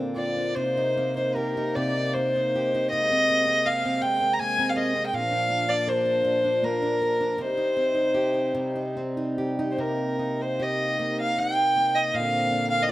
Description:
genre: celtic folk, Celtic slow air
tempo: 71-83 BPM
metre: 3/4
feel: rubato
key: C minor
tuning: A4 = 440 Hz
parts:
  - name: picked plugged-in steel-string acoustic guitar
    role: accompaniment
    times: 0.0-12.9 s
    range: Bb2 to Bb4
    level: -30 LUFS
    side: right 1 dB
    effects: slapback echo
  - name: pedal harmonium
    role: sustained chords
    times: 0.0-12.9 s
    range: Bb2 to Eb4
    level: -32 LUFS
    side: left 1 dB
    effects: none
  - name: dark fiddle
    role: melody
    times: 0.2-12.9 s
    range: Bb4 to Bb5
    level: -23 LUFS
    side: equal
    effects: slapback echo
room: little or no reverb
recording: recorded outdoors, with no room sound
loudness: -22 LUFS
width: side -16 dB against mid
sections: 0.0-9.8 A section; 9.8-12.9 B section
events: none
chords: 0.0 Bbadd9; 0.6 Cm7; 2.9 Abadd9/C; 5.1 Bb; 7.4 Cm; 9.8 Cm7; 12.1 Bbadd9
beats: | 0.56 1.36 2.15 | 2.92 3.66 4.40 | 5.13 5.87 6.62 | 7.38 8.14 8.95 | 9.78 10.59 11.37 | 12.13 12.88

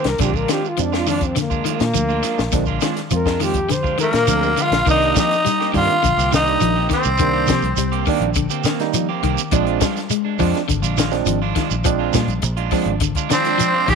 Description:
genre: afrobeat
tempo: 103 BPM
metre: 4/4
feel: straight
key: C minor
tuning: A4 = 440 Hz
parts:
  - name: breathy trombone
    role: melody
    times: 0.0-4.6 s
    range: Bb3 to C5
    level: -23 LUFS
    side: left 1 dB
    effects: none
  - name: electric guitar at the edge of break-up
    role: arpeggios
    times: 0.0-13.9 s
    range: D3 to Ab3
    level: -24 LUFS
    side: left 14 dB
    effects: none
  - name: electric guitar at the edge of break-up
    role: stabs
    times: 0.0-13.9 s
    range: Eb3 to G4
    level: -26 LUFS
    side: right 14 dB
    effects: slapback echo
  - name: compact cocktail drum kit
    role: drums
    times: 0.0-13.9 s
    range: crash cymbal, hi-hat, kick drum, snare drum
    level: -24 LUFS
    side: left 4 dB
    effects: none
  - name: fingered electric bass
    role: bass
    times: 0.1-13.9 s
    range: Ab1 to C3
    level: -23 LUFS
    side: equal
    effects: none
  - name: shekere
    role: percussion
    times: 0.1-13.9 s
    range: none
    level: -25 LUFS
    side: right 10 dB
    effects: none
  - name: barky tine electric piano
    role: accompaniment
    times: 0.2-13.7 s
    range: Eb3 to F4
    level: -24 LUFS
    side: right 15 dB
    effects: overdrive
  - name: growling tenor saxophone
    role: melody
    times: 4.0-8.0, 13.3-13.9 s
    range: Bb3 to G4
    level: -19 LUFS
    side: right 2 dB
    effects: none
  - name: bright reedy bansuri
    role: second line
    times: 4.0-8.0, 13.3-13.9 s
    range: Bb4 to G5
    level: -25 LUFS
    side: left 11 dB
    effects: none
  - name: growling trumpet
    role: second line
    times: 13.3-13.9 s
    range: D4 to Ab4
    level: -24 LUFS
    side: right 13 dB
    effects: none
room: light reverb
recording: 1960s-style stereo with parts hard left and right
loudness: -16 LUFS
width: side -5 dB against mid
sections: 0.0-4.9 A section; 4.9-13.9 B section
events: trombone solo 0.0-4.9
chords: 0.2 Bb7; 4.9 Cm7; 9.5 Bb7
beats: | 0.19 0.78 1.36 1.95 | 2.54 3.12 3.70 4.29 | 4.87 5.45 6.04 6.62 | 7.20 7.78 8.36 8.95 | 9.53 10.11 10.69 11.27 | 11.85 12.43 13.02 13.60

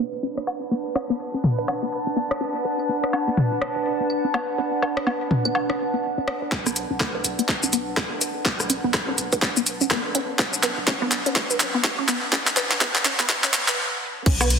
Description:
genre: minimal techno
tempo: 124 BPM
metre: 4/4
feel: swing 60% on 16ths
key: B minor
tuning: A4 = 440 Hz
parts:
  - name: resonant blip pluck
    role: riff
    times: 0.0-14.5 s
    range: B3 to B4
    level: -28 LUFS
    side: equal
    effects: phaser, sidechain pumping, tape echo
  - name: bubbling stepped-filter texture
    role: texture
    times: 0.0-6.5 s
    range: B4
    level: -36 LUFS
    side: right 6 dB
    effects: chorus, built-in reverb, sidechain pumping
  - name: warbly tape-like pad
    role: texture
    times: 0.1-13.8 s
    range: D4 to A5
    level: -28 LUFS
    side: right 1 dB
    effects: chorus, built-in reverb, sidechain pumping
  - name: organic electronic drum kit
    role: percussion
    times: 0.1-6.4, 14.3-14.5 s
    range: claves, rim click, toms, woodblock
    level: -25 LUFS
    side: left 1 dB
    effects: soft clipping on snare
  - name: punchy sub bass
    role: bass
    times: 6.5-14.6 s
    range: B1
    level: -32 LUFS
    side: equal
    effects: sidechain pumping, high-pass filter
  - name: electronic kick drum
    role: drums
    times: 6.5-14.4 s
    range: none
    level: -27 LUFS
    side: equal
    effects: high-pass filter on kick, high-pass filter on room
  - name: garage drum kit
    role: drums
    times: 6.5-14.6 s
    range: crash cymbal, handclaps, hi-hat, ride cymbal, rim click, shaker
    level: -22 LUFS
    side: equal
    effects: low-pass filter on perc, low-pass filter on hats, low-pass filter on cymbals, soft clipping on snare, low-pass filter on snare, low-pass filter on room
room: moderate lush hall reverb, RT60 2.1 s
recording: dense, heavily limited modern master, high-pass filter, low-pass filter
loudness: -21 LUFS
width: side -6 dB against mid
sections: 0.0-6.5 A section; 6.5-14.3 B section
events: filter sweep 0.0-6.5; build-up 6.5-14.3; drum fill 6.5-13.8; filter sweep on synth arpeggio sound 6.5-14.3; stop 13.8-14.3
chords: 0.0 Bm7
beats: 0.23 | 0.71 1.20 1.68 2.17 | 2.65 3.13 3.62 4.10 | 4.58 5.07 5.55 6.04 | 6.52 7.00 7.49 7.97 | 8.46 8.94 9.42 9.91 | 10.39 10.88 11.36 11.84 | 12.33 12.81 13.29 13.78 | 14.26

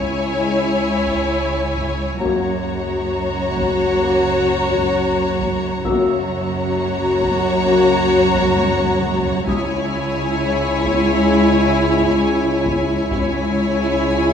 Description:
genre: cinematic, suspense film score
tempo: 66 BPM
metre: 4/4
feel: straight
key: C# dorian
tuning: A4 = 440 Hz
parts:
  - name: rich studio violin section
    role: melody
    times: 0.0-14.3 s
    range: G#5 to A#5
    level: -26 LUFS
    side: left 3 dB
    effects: none
  - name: rich studio violin section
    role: second line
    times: 0.0-14.3 s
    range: C#5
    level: -23 LUFS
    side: left 3 dB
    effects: none
  - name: rich studio viola section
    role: accompaniment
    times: 0.0-14.3 s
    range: E4 to F#4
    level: -21 LUFS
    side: equal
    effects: none
  - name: rich chamber cello section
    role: bass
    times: 0.0-14.3 s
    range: C#2 to F#2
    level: -23 LUFS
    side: right 2 dB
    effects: none
  - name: rich studio double bass section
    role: bass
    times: 0.0-14.3 s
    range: F#1 to C#2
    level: -27 LUFS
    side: right 2 dB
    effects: none
  - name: deep rumbling drone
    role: drone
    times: 0.0-14.3 s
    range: C#2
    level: -31 LUFS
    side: equal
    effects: built-in reverb
  - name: concert harp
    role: texture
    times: 0.0-13.4 s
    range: E5 to B6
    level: -35 LUFS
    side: equal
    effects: none
  - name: mellow French horn section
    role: sustained chords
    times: 0.4-14.3 s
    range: G#3 to F#4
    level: -22 LUFS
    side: left 3 dB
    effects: none
  - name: taiko ensemble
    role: drums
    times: 1.1-14.0 s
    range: none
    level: -29 LUFS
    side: left 1 dB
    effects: none
room: moderate scoring stage reverb, RT60 2.0 s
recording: studio ambience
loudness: -16 LUFS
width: side -8 dB against mid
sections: 0.0-14.3 A section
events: drum fill 8.6-9.5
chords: 0.0 C#m; 2.2 F#; 9.5 C#m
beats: 0.39 1.29 | 2.20 3.11 4.02 4.93 | 5.84 6.75 7.66 8.57 | 9.48 10.38 11.29 12.20 | 13.11 14.02

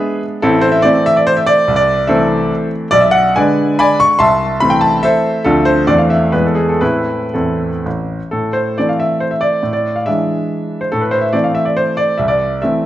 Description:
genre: classical, romantic triple-time dance for piano with dotted rhythms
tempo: 110-153 BPM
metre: 3/4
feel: rubato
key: A minor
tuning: A4 = 440 Hz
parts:
  - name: clear baby grand piano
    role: solo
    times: 0.0-12.9 s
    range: A1 to C#6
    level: -12 LUFS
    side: equal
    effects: none
room: wet recital hall reverb, RT60 1.7 s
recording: none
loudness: -12 LUFS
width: side -13 dB against mid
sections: 0.0-8.3 A section; 8.3-12.9 B section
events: none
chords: 0.4 Am; 1.7 Am/C; 2.9 G#dim/B; 4.2 Am/C; 5.4 Dm7; 5.9 Am/E; 6.3 E; 6.8 Am; 9.6 E7/A; 10.9 Am; 12.2 Am/C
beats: 0.01 | 0.42 0.83 1.27 | 1.67 2.08 2.50 | 2.91 3.34 3.77 | 4.18 4.59 5.03 | 5.45 5.87 6.33 | 6.81 7.34 7.86 | 8.32 8.77 9.22 | 9.64 10.07 10.51 | 10.91 11.34 11.77 | 12.18 12.61

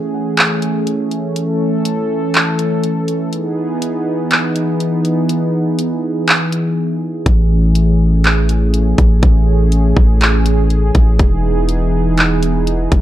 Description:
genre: hip hop, atmospheric cloud-rap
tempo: 122 BPM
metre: 4/4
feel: half-time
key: unclear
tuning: A4 = 440 Hz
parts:
  - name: warm analog pad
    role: sustained chords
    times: 0.0-13.0 s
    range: E3 to A4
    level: -16 LUFS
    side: equal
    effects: chorus, sidechain pumping
  - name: trap drum kit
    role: drums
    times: 0.4-13.0 s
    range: handclaps, hi-hat, kick drum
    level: -14 LUFS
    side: equal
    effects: none
  - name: long sustained 808-style bass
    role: bass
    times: 7.3-13.0 s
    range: E1 to A1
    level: -14 LUFS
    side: equal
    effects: none
room: little or no reverb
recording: none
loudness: -12 LUFS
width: side -13 dB against mid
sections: 0.0-13.0 A section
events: break 0.0-7.3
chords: 0.0 Amaj7; 3.3 Emaj7; 7.3 Amaj7; 11.2 Emaj7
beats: 0.38 0.87 | 1.36 1.85 2.34 2.83 | 3.33 3.82 4.31 4.80 | 5.29 5.79 6.28 6.77 | 7.26 7.75 8.24 8.74 | 9.23 9.72 10.21 10.70 | 11.20 11.69 12.18 12.67

